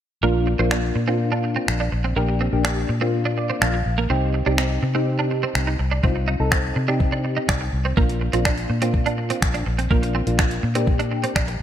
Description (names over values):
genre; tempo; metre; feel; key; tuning
dance-pop; 124 BPM; 4/4; straight; Bb major; A4 = 440 Hz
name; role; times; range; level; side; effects
soft electric-piano-like synth keys; accompaniment; 0.2-11.5 s; Bb3 to F5; -25 LUFS; left 1 dB; chorus, phaser, sidechain pumping
twelve-string electric guitar; riff; 0.2-11.5 s; Bb3 to Eb4; -27 LUFS; right 5 dB; ensemble chorus
vintage muted fingered electric bass; bass; 0.2-11.6 s; Bb1 to C3; -23 LUFS; equal; sidechain pumping
gated 80s digital drum machine; drums; 0.7-11.6 s; finger snaps, hi-hat, kick drum; -23 LUFS; equal; gated reverb
room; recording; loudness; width
light reverb; bright 1980s-style digital production; -19 LUFS; side -10 dB against mid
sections
0.2-11.6 A section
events
synth keys fill 3.1-4.1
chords
0.2 Bb; 4.1 Cm; 8.0 Bb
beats
| 0.23 0.71 1.20 1.68 | 2.17 2.65 3.13 3.62 | 4.10 4.58 5.07 5.55 | 6.04 6.52 7.00 7.49 | 7.97 8.46 8.94 9.42 | 9.91 10.39 10.88 11.36